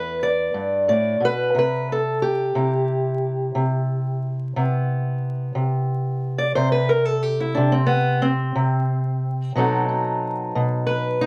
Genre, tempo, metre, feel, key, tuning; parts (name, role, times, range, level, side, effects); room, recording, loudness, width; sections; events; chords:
acoustic country blues, solo or duo; 60 BPM (dotted quarters); 12/8; straight; A4 = 439 Hz
fingerpicked steel-string acoustic guitar; solo; 0.0-11.3 s; E2 to D5; -22 LUFS; equal
light reverb; vinyl crackle; -22 LUFS; mono
0.0-11.3 A section
steel-string acoustic guitar solo 0.0-11.3
0.0 Em7; 1.6 Cmaj7; 9.6 B7b9